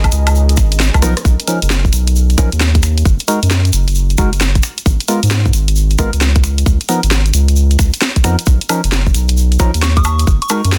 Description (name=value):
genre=UK garage, two-step garage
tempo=133 BPM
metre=4/4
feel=swing 65% on 16ths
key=unclear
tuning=A4 = 440 Hz
part: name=soft string machine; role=sustained chords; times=0.0-1.3 s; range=A#4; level=-42 LUFS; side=equal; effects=none
part: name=saturated sub bass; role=bass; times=0.0-10.8 s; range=F#1 to G#2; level=-15 LUFS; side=equal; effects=none
part: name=electronic kick drum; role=drums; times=0.0-10.4 s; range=none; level=-15 LUFS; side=equal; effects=overdrive, small room reverb
part: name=garage drum kit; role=drums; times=0.0-10.8 s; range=finger snaps, hi-hat, rim click, snare drum, woodblock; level=-20 LUFS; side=equal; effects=overdrive, small room reverb
part: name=tube shaker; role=percussion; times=0.0-10.8 s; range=none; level=-28 LUFS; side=equal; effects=none
part: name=deep dark ambient pad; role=texture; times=0.0-1.2 s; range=C#4 to A#5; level=-32 LUFS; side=equal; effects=chorus, built-in reverb, sidechain pumping
part: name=percussive organ stab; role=stabs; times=1.0-10.6 s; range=E#3 to A#4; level=-21 LUFS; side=equal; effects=analog chorus, cassette tape, dub echo
part: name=soft synth bell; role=melody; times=9.8-10.6 s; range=C#6 to D#6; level=-25 LUFS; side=equal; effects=chorus, dub echo
room=little or no reverb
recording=dense, heavily limited modern master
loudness=-13 LUFS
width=mono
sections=0.0-1.2 A section; 1.2-10.8 B section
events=drop 0.0-1.2; drum fill 0.9-1.2; band accent 1.1; filter sweep on synth stab 1.2-10.8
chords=0.0 G#m69; 1.2 Bmaj9#11; 3.1 F#69; 4.6 G#m69; 6.7 C#13; 8.5 Bmaj9#11; 10.3 F#69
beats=0.35 0.80 | 1.25 1.70 2.15 2.60 | 3.06 3.51 3.96 4.41 | 4.86 5.31 5.76 6.21 | 6.66 7.12 7.57 8.02 | 8.47 8.92 9.37 9.82 | 10.27 10.72